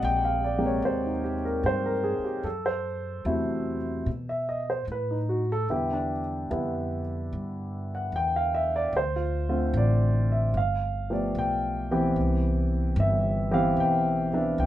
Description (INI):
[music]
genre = jazz ballad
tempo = 74 BPM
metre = 4/4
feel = swing 69% on 8ths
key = C major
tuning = A4 = 440 Hz
[part]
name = dark grand piano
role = accompaniment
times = 0.0-14.7 s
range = C3 to G5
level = -26 LUFS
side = equal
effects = none
[part]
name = upright bass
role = bass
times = 0.0-14.7 s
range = G1 to B2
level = -29 LUFS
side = equal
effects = none
[sound]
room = moderate studio ambience, RT60 0.5 s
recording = band playing live in one room, nothing above 10.8 kHz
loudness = -24 LUFS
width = side -13 dB against mid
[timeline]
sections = 0.0-14.7 A section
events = none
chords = 0.0 Abmaj9; 2.4 F#m7b5; 4.1 Asus2; 5.7 Em7; 8.9 Dm7; 10.6 G9; 12.2 Cmaj7